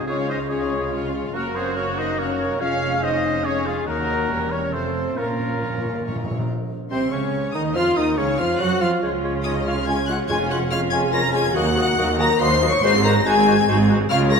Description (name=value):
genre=quick classical-period movement for symphony orchestra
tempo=142 BPM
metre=3/4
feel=straight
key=unclear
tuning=A4 = 440 Hz
part: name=rich chamber violin section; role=melody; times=0.0-14.4 s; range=F5 to Db7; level=-28 LUFS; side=left 3 dB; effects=none
part: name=mellow clarinet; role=second line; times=0.0-14.4 s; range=C4 to Gb4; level=-30 LUFS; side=left 2 dB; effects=none
part: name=rich chamber violin section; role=second line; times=0.0-14.4 s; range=Db4 to Db6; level=-31 LUFS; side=left 4 dB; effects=none
part: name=warm oboe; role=second line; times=0.0-14.4 s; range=F4 to Gb5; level=-32 LUFS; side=equal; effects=none
part: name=dark bassoon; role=accompaniment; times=0.0-14.4 s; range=C3 to Bb3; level=-29 LUFS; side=equal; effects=none
part: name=rich chamber viola section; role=accompaniment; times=0.0-14.4 s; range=Gb3 to Ab4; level=-28 LUFS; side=right 2 dB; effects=none
part: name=dark French horn section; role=sustained chords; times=0.0-14.4 s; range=Ab3 to Db5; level=-27 LUFS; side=left 4 dB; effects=none
part: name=rich chamber double bass section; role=bass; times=0.0-14.4 s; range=E1 to Gb2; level=-27 LUFS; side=right 3 dB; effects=none
part: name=warm chamber cello section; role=bass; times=0.0-14.4 s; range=Eb2 to Gb3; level=-27 LUFS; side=right 2 dB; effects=none
part: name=small flute group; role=second line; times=0.1-14.4 s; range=Ab4 to Db6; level=-28 LUFS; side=left 1 dB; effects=none
part: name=clear trumpet section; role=stabs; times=0.1-6.3 s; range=Ab4 to F5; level=-27 LUFS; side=right 1 dB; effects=none
part: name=timpani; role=percussion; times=5.2-6.5, 10.3-10.9 s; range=F2 to Bb2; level=-31 LUFS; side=equal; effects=none
room=wet concert hall reverb, RT60 1.9 s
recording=minimal, uncompressed stereo recording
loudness=-18 LUFS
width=side -6 dB against mid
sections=0.0-6.5 A section; 6.5-14.4 B section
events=timpani fill 5.2-6.5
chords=0.1 Db; 1.3 Gb; 2.6 Db/F; 3.9 Ebm; 4.3 Edim7; 4.7 F; 5.2 Bbm; 6.5 Dbsus2; 7.8 Ebm9; 9.0 Db; 10.3 Db/F; 11.6 Ebm; 12.8 Ab7